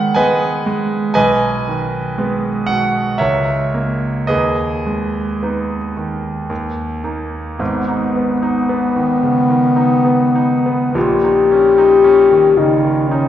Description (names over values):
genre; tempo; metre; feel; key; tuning
classical, romantic duo for French horn and grand piano; 48-62 BPM; 3/4; rubato; G# minor; A4 = 440 Hz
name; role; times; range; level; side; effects
bright concert grand piano; accompaniment; 0.0-13.3 s; G#1 to G#5; -16 LUFS; right 2 dB; none
warm French horn; melody; 7.6-13.3 s; B3 to G4; -12 LUFS; left 3 dB; none
room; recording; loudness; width
wet scoring stage reverb, RT60 1.9 s; heard from further back in the room, nothing above 7.6 kHz; -13 LUFS; side -10 dB against mid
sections
0.0-7.6 A section; 7.6-13.3 B section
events
none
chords
0.0 G#m; 1.2 G#m/B; 3.2 A#dim/C#; 4.3 G#m/D#; 6.5 D#5; 7.6 G#m; 10.9 D#7/A#